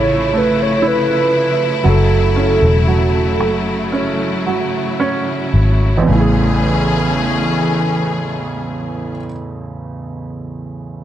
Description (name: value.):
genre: pop ballad.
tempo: 54-60 BPM.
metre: 4/4.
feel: straight.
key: A major.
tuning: A4 = 440 Hz.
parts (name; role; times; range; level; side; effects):
warm velvety synth lead; melody; 0.0-5.0 s; A4 to C#5; -17 LUFS; right 2 dB; chorus.
felt-muted upright piano; accompaniment; 0.0-11.0 s; A1 to G#4; -19 LUFS; right 3 dB; none.
clear studio string section; sustained chords; 0.0-9.2 s; C#3 to G#4; -20 LUFS; left 3 dB; none.
vintage muted fingered electric bass; bass; 0.0-9.2 s; E1 to A1; -16 LUFS; left 1 dB; none.
room: light reverb, studio ambience.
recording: dark, warm production.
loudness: -13 LUFS.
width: side -11 dB against mid.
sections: 0.0-6.1 A section; 6.1-10.5 B section.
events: slowing down 0.0-6.1.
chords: 0.0 A; 1.9 F#m7; 6.1 Amaj7.